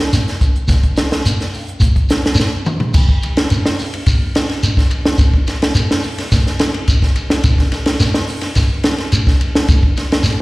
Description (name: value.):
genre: afrobeat.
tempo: 107 BPM.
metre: 4/4.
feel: straight.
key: none.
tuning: none.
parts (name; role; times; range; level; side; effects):
compact cocktail drum kit; drums; 0.0-10.4 s; crash cymbal, hi-hat, kick drum, ride cymbal, snare drum, toms; -14 LUFS; equal; slapback echo.
shekere; percussion; 0.1-10.4 s; none; -17 LUFS; equal; slapback echo.
room: moderate lush hall reverb, RT60 1.8 s.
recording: live gig heard through the venue's PA, recital hall reverb.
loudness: -13 LUFS.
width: side -21 dB against mid.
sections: 0.0-2.9 A section; 2.9-10.4 B section.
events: drum fill 2.4-2.9.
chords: none.